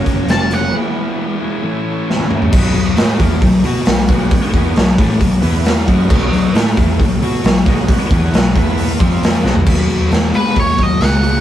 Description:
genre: blues rock power trio and southern rock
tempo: 134 BPM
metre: 4/4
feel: straight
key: B mixolydian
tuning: A4 = 440 Hz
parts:
  - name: overdriven tonewheel organ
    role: sustained chords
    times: 0.0-9.6 s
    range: A#3 to F#5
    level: -27 LUFS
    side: right 2 dB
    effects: slow rotary speaker
  - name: thick fuzz guitar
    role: riff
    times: 0.0-11.4 s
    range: F#2 to B4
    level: -17 LUFS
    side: left 2 dB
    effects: distortion
  - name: vintage muted picked electric bass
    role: bass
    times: 0.0-11.4 s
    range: E#1 to B2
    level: -18 LUFS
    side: equal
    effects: none
  - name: raw garage drum kit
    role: drums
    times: 0.1-11.3 s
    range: crash cymbal, hi-hat, kick drum, snare drum, toms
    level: -14 LUFS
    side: equal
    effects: none
  - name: octave-fuzz lead guitar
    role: melody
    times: 0.3-0.7, 10.4-11.4 s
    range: B4 to A5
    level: -17 LUFS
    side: equal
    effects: distortion
room: light reverb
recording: rough rehearsal-room recording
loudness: -12 LUFS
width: side -12 dB against mid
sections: 0.0-2.5 A section; 2.5-9.7 B section; 9.7-11.4 C section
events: break 0.7-2.5; drum fill 2.1-2.5, 9.5; lead electric guitar solo 9.7-11.4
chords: 0.0 F#; 0.7 E; 1.6 A; 2.5 B; 5.4 E5; 5.9 B; 8.6 E5; 9.0 F5; 9.5 B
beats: 0.28 | 0.73 1.18 1.63 2.08 | 2.52 2.97 3.42 3.87 | 4.31 4.76 5.21 5.65 | 6.10 6.54 6.99 7.44 | 7.89 8.33 8.78 9.23 | 9.68 10.12 10.57 11.02

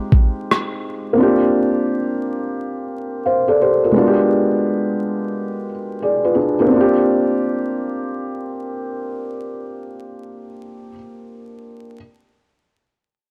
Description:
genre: lo-fi hip hop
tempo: 87 BPM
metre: 4/4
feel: swing 62% on 16ths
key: Bb major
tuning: A4 = 440 Hz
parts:
  - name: felt-muted upright piano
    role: accompaniment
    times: 0.0-12.0 s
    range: Ab3 to F5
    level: -20 LUFS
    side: equal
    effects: low-pass filter
  - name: boom bap sampler-style drum kit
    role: drums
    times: 0.1-0.7 s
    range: hi-hat, kick drum, rim click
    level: -17 LUFS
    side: equal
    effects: overdrive, vintage 12-bit sampler grit
room: moderate spring reverb, RT60 1.8 s, digital ambience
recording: worn, warbling old tape, cassette tape, vinyl crackle, warbly pitch drift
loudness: -19 LUFS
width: mono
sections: 0.0-6.7 A section; 6.7-9.5 B section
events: none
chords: 0.0 Fm9/Ab; 1.2 Bb69; 3.9 G7b9; 6.7 Bb69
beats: 0.49 | 1.18 1.87 2.56 3.25 | 3.94 4.63 5.32 6.01 | 6.70 7.38 8.07 8.76

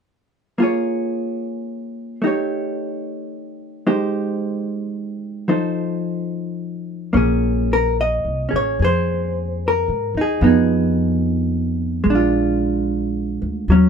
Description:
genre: jazz ballad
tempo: 74 BPM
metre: 4/4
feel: swing 66% on 8ths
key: Bb dorian, Bb minor from 7.1 s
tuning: A4 = 440 Hz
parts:
  - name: vintage hollow-body jazz guitar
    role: accompaniment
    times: 0.6-13.9 s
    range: F3 to Eb5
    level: -19 LUFS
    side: right 1 dB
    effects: none
  - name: upright bass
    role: bass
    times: 7.1-13.9 s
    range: A1 to Ab2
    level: -22 LUFS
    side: equal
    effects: none
room: light reverb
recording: minimal, uncompressed stereo recording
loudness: -18 LUFS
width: side -6 dB against mid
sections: 0.6-7.1 A section; 7.1-13.9 B section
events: none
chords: 0.6 Bbm7; 2.2 A7#11; 3.8 Abmaj7; 5.5 F7; 7.1 Bbm9; 10.4 Fm7b5; 12.0 Bb7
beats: | 0.57 1.40 2.22 3.03 | 3.84 4.65 5.47 6.30 | 7.13 7.96 8.78 9.60 | 10.42 11.23 12.05 12.86 | 13.67

